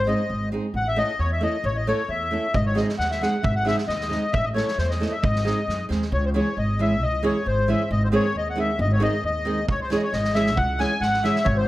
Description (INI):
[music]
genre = balkan folk, Balkan wedding band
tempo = 134 BPM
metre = 2/4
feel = straight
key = unclear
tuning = A4 = 441 Hz
[part]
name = accordion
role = melody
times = 0.0-11.7 s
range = B#4 to G#5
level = -24 LUFS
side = left 2 dB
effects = light tremolo tuning
[part]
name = upright bass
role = bass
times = 0.0-11.7 s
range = G#1 to F#2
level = -25 LUFS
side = equal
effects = none
[part]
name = flamenco guitar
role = accompaniment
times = 0.1-11.4 s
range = D#3 to A4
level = -26 LUFS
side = right 2 dB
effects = none
[part]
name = loose indie drum kit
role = percussion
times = 2.5-6.1, 9.7-11.6 s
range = kick drum, snare drum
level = -29 LUFS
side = right 2 dB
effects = none
[sound]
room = moderate recital hall reverb, RT60 1.6 s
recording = none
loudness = -20 LUFS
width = side -16 dB against mid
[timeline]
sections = 0.0-6.1 A section; 6.1-11.7 B section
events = none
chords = 0.0 G#; 0.7 A; 2.5 G#; 4.3 A; 5.2 G#; 6.1 C#m; 7.9 G#; 9.7 C#m